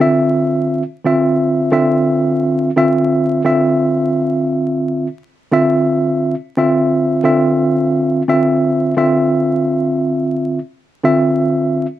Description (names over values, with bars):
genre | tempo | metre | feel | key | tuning
hip hop | 87 BPM | 4/4 | swing 57% on 16ths | D minor | A4 = 441 Hz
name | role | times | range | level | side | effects
mellow tine electric piano | solo | 0.0-11.9 s | D3 to E5 | -13 LUFS | equal | medium stereo tremolo, cassette tape, high-pass filter, low-pass filter
room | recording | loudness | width
light reverb | vinyl crackle | -13 LUFS | side -13 dB against mid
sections
0.0-12.0 A section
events
none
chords
0.0 Dm9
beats
| 0.02 0.71 1.40 2.09 | 2.78 3.47 4.16 4.85 | 5.54 6.23 6.92 7.61 | 8.30 8.99 9.68 10.37 | 11.05 11.74